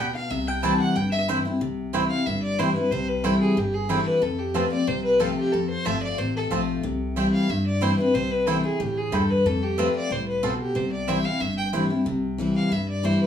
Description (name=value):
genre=bluegrass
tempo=184 BPM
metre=4/4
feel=straight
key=C major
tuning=A4 = 439 Hz
part: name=clear fiddle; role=melody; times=0.0-13.3 s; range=G4 to A5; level=-26 LUFS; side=left 1 dB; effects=none
part: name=lap resonator guitar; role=second line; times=0.0-1.3 s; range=E5 to A5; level=-30 LUFS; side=left 3 dB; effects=none
part: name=picked steel-string acoustic guitar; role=accompaniment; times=0.0-13.3 s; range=F2 to F4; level=-25 LUFS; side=left 2 dB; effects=none
part: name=mandolin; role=stabs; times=0.0-11.8 s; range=C4 to A5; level=-27 LUFS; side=right 6 dB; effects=none
part: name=upright bass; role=bass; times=0.0-13.1 s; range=G1 to G2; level=-32 LUFS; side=right 1 dB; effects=none
room=moderate studio ambience, RT60 0.5 s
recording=small room ambience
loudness=-21 LUFS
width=side -9 dB against mid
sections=0.0-1.6 A section; 1.6-12.1 B section; 12.1-13.3 B section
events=none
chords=0.3 C; 4.2 F; 6.8 C; 9.5 F; 10.8 C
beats=| 0.30 0.63 0.96 1.28 | 1.61 1.94 2.26 2.59 | 2.92 3.24 3.57 3.90 | 4.22 4.55 4.88 5.20 | 5.53 5.86 6.18 6.51 | 6.84 7.17 7.49 7.82 | 8.15 8.47 8.80 9.13 | 9.45 9.78 10.11 10.43 | 10.76 11.09 11.41 11.74 | 12.06 12.39 12.72 13.04